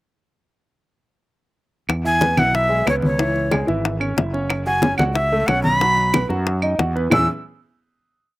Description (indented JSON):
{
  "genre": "latin, salsa",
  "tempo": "184 BPM",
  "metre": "4/4",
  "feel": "straight",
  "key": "E major",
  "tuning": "A4 = 441 Hz",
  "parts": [
    { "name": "fretless electric bass", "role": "bass", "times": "1.9-7.3 s", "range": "F#1 to F#2", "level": "-23 LUFS", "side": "equal", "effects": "none" },
    { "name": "bongos", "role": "percussion", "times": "1.9-7.2 s", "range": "none", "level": "-23 LUFS", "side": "left 4 dB", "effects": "none" },
    { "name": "claves", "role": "percussion", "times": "1.9-7.2 s", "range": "none", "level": "-27 LUFS", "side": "right 4 dB", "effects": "none" },
    { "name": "congas", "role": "percussion", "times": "1.9-7.2 s", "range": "none", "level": "-24 LUFS", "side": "equal", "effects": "none" },
    { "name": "clear concert grand piano", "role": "accompaniment", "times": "2.0-7.3 s", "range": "E3 to F#5", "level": "-24 LUFS", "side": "right 1 dB", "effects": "none" },
    { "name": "breathy bright jazz flute", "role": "melody", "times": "2.1-7.3 s", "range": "C#5 to E6", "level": "-19 LUFS", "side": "equal", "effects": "none" }
  ],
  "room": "little or no reverb",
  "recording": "recorded outdoors, with no room sound",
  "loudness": "-16 LUFS",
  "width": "side -17 dB against mid",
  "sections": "1.9-7.1 verse; 7.1-8.4 final chord",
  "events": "none",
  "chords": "1.9 E6; 3.2 C#m; 4.5 F#m; 5.8 B; 7.1 E6",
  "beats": "| 1.89 2.21 2.54 2.87 | 3.19 3.52 3.84 4.17 | 4.50 4.82 5.15 5.48 | 5.81 6.13 6.46 6.79 | 7.11"
}